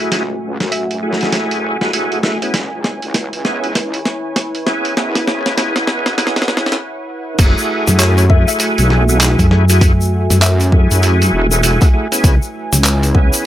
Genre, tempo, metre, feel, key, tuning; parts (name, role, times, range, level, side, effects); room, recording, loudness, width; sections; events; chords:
glitch hop; 99 BPM; 4/4; swing 61% on 16ths; F# minor; A4 = 436 Hz
dark analog pad; sustained chords; 0.0-13.5 s; A3 to G#5; -23 LUFS; right 1 dB; chorus, sidechain pumping
overdriven tonewheel organ; stabs; 0.0-13.5 s; A3 to G#4; -19 LUFS; equal; chorus vibrato, slow rotary speaker, sidechain pumping, low-pass filter, digital delay
boom bap sampler-style drum kit; drums; 0.0-13.4 s; crash cymbal, handclaps, hi-hat, snare drum; -18 LUFS; equal
wobble bass; bass; 0.1-13.3 s; E1 to F#2; -16 LUFS; equal; chorus, high-pass filter
woody wave-folded pluck; melody; 0.7-1.6, 8.0-11.3 s; C#5 to E5; -25 LUFS; left 4 dB; chorus, digital delay
electronic kick drum; drums; 7.4-13.3 s; -11 LUFS; equal
egg shaker; percussion; 7.4-13.4 s; -20 LUFS; left 3 dB
hollow-body short-scale fingered electric bass; bass; 9.4-10.3 s; F#2; -12 LUFS; equal
light reverb; high-pass filter; -12 LUFS; side -12 dB against mid
0.0-7.4 A section; 7.4-13.5 B section
build-up 0.0-7.4; drum fill 0.0-6.8; break 6.8-7.4; drop 7.4-13.5
0.0 F#m9; 2.5 C#m7; 7.4 F#m9; 12.2 C#m7